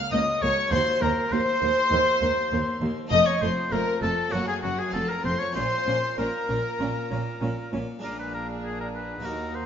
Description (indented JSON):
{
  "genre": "classical, baroque-style concerto movement with solo episodes",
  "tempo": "99 BPM",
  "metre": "4/4",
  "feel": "straight",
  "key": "Bb minor",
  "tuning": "A4 = 440 Hz",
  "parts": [
    { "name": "rich chamber violin section", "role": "melody", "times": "0.0-9.7 s", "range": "Gb5 to F6", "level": "-34 LUFS", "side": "left 4 dB", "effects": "none" },
    { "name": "rich chamber violin section", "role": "second line", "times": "0.0-9.7 s", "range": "Gb4 to F5", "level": "-28 LUFS", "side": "left 1 dB", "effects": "none" },
    { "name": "harpsichord", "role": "accompaniment", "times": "0.0-9.7 s", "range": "Db2 to Gb4", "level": "-35 LUFS", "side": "left 1 dB", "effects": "none" },
    { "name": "clear oboe", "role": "melody", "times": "0.1-9.7 s", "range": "Gb4 to Eb5", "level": "-28 LUFS", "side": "left 1 dB", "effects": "none" },
    { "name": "dark studio viola section", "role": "accompaniment", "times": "0.1-9.7 s", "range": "A3 to Eb4", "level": "-33 LUFS", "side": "right 2 dB", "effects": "none" },
    { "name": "rich chamber double bass section", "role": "bass", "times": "0.1-9.7 s", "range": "F1 to Eb2", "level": "-34 LUFS", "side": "right 3 dB", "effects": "none" },
    { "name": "warm chamber cello section", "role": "bass", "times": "0.1-9.7 s", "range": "Db2 to Bb2", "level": "-33 LUFS", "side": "right 3 dB", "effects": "none" }
  ],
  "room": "wet scoring stage reverb, RT60 1.7 s",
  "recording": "nothing above 7.5 kHz",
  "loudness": "-23 LUFS",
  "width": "side -8 dB against mid",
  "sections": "0.0-8.0 A section; 8.0-9.7 B section",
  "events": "none",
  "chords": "0.0 Bbm/Db; 0.7 Cm7b5/Eb; 3.1 F; 4.3 Gb; 4.9 F5; 5.6 Bbm; 8.0 Bb7",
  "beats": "0.12 | 0.72 1.32 1.92 2.52 | 3.12 3.72 4.33 4.94 | 5.56 6.18 6.80 7.42 | 8.04 8.64 9.25"
}